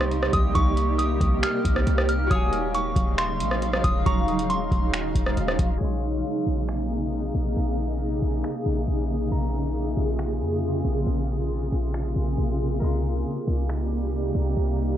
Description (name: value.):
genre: hip hop, atmospheric cloud-rap.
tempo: 137 BPM.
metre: 4/4.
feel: half-time.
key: Bb minor.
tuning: A4 = 441 Hz.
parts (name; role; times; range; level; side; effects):
delicate synth tine bell; melody; 0.0-5.3 s; C6 to F6; -28 LUFS; right 1 dB; chorus, low-pass filter, tape echo.
shimmering ambient pad; sustained chords; 0.0-15.0 s; C3 to F5; -27 LUFS; equal; chorus, built-in reverb, sidechain pumping.
clean 808-style bass; bass; 0.0-15.0 s; Eb1 to F2; -26 LUFS; equal; none.
booming analog drum machine; drums; 0.0-13.8 s; finger snaps, hi-hat, kick drum, rim click; -25 LUFS; equal; none.
concert harp; texture; 0.0-15.0 s; Gb4 to C7; -37 LUFS; left 3 dB; none.
room: digital ambience.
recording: worn, warbling old tape, cassette tape, warbly pitch drift, low-pass filter.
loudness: -22 LUFS.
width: side -11 dB against mid.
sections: 0.0-5.8 A section; 5.8-15.0 B section.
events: none.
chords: 0.0 Cm7; 2.3 Ebm11; 5.8 Bbm11; 12.8 Cm7.